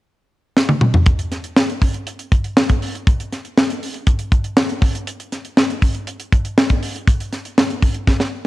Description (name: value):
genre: pop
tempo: 120 BPM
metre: 4/4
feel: straight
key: none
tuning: none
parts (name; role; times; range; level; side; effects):
- tight funk drum kit; drums; 0.6-8.3 s; hi-hat, kick drum, snare drum, toms; -15 LUFS; equal; cassette tape
room: light reverb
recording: home recording on cassette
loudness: -15 LUFS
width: side -17 dB against mid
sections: 0.0-1.1 A section; 1.1-8.5 B section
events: drum fill 0.6-1.1, 8.1-8.5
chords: none